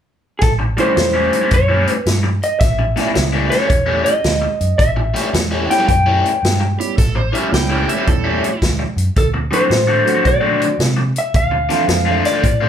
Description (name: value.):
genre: electric blues shuffle.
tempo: 110 BPM.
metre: 4/4.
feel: swing 66% on 8ths.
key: A mixolydian.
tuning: A4 = 440 Hz.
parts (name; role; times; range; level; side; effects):
electric guitar through a small old amp; melody; 0.4-12.7 s; G#4 to G5; -18 LUFS; left 1 dB; none.
vintage muted fingered electric bass; bass; 0.4-12.7 s; A1 to C3; -20 LUFS; equal; none.
vintage drum kit; drums; 0.4-12.6 s; hi-hat, kick drum, snare drum; -19 LUFS; equal; none.
raw garage guitar; riff; 0.6-12.7 s; A2 to F#4; -19 LUFS; left 1 dB; overdrive, phaser.
dark grand piano; accompaniment; 0.8-12.4 s; E3 to C5; -24 LUFS; right 7 dB; none.
overdriven slide guitar; second line; 6.8-8.6 s; G4 to G5; -24 LUFS; right 4 dB; none.
room: light reverb.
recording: band playing live in one room.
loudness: -13 LUFS.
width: side -9 dB against mid.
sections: 0.4-12.7 A section.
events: none.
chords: 0.4 A7; 9.2 D7; 11.3 Dm7.